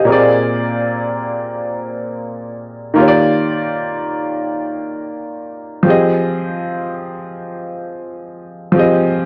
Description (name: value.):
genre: R&B.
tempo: free time.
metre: none.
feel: none.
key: F dorian.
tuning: A4 = 439 Hz.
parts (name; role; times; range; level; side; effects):
clear concert grand piano; solo; 0.0-9.3 s; Bb2 to Eb5; -18 LUFS; equal; cassette tape.
room: light reverb, studio reverb.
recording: home recording on cassette.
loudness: -17 LUFS.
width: mono.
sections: 0.0-5.9 A section; 5.9-9.3 B section.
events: none.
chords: 0.1 Bb7; 3.0 Ebmaj7; 5.9 Fm7.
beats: free time.